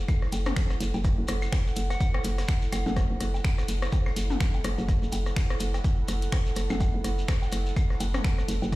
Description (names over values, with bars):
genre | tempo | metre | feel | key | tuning
minimal techno | 125 BPM | 4/4 | swing 58% on 16ths | F# minor | A4 = 438 Hz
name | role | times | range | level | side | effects
hollow knocking FM bass | bass | 0.0-8.8 s | F#1 | -28 LUFS | equal | sidechain pumping
warbly tape-like pad | texture | 0.0-8.8 s | E4 to F#5 | -37 LUFS | right 3 dB | chorus, built-in reverb, sidechain pumping
dusty soul sampler-style drum kit | drums | 0.1-8.8 s | hi-hat, snare drum | -47 LUFS | right 2 dB | none
electronic kick drum | drums | 0.1-8.8 s | none | -25 LUFS | equal | overdrive
shekere | percussion | 0.1-8.8 s | none | -41 LUFS | left 1 dB | none
techno drum kit | percussion | 0.1-8.8 s | claves, rim click, toms, woodblock | -36 LUFS | left 2 dB | dub echo
punchy analog drum machine | drums | 0.3-8.6 s | finger snaps, hi-hat | -39 LUFS | equal | overdrive
soft synth bell | melody | 1.9-2.1 s | F#5 | -39 LUFS | left 1 dB | chorus, phaser, dub echo
room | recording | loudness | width
digital ambience | played on a big sound system in a bare room, stone room reverb | -24 LUFS | side -18 dB against mid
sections
0.0-8.8 A section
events
none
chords
0.0 F#m7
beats
0.09 0.56 | 1.04 1.52 2.00 2.48 | 2.96 3.44 3.92 4.41 | 4.88 5.37 5.84 6.33 | 6.80 7.29 7.76 8.24 | 8.72